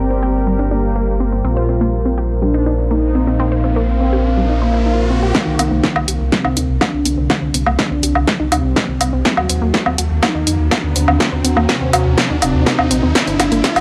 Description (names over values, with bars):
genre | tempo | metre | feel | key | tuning
melodic techno | 123 BPM | 4/4 | straight | C minor | A4 = 436 Hz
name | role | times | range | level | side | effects
mellow synth brass | melody | 0.0-13.8 s | C3 to Gb4 | -23 LUFS | equal | chorus, sidechain pumping, analog delay
deep dark ambient pad | sustained chords | 0.0-13.8 s | G3 to Bb5 | -28 LUFS | equal | chorus, built-in reverb, sidechain pumping
dark detuned saw bass | bass | 0.0-13.8 s | Eb1 to F2 | -20 LUFS | equal | sidechain pumping
unison pluck | arpeggios | 0.1-13.8 s | Gb3 to C5 | -25 LUFS | equal | sidechain pumping, tape echo
riser | sound effects | 3.1-13.8 s | none | -29 LUFS | equal | none
electronic kick drum | drums | 5.3-13.7 s | none | -24 LUFS | equal | overdrive, high-pass filter on kick, small room reverb
techno drum kit | drums | 5.3-13.8 s | hi-hat, snare drum, woodblock | -19 LUFS | equal | overdrive, high-pass filter on snare, small room reverb, high-pass filter on hats, high-pass filter on perc
room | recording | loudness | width
light reverb, digital ambience | dry, gritty hardware recording | -16 LUFS | mono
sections
0.0-5.3 A section; 5.3-13.8 B section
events
filter sweep on synth arpeggio sound 0.0-5.3, 5.3-13.8; riser 3.1-5.3, 5.3-13.8; build-up 5.3-13.8; drum fill 5.3-13.8; filter sweep on analog polysynth 5.3-13.8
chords
0.0 Gm; 1.4 Bbsus2; 5.3 Cm7; 9.3 Ebm; 13.2 Gm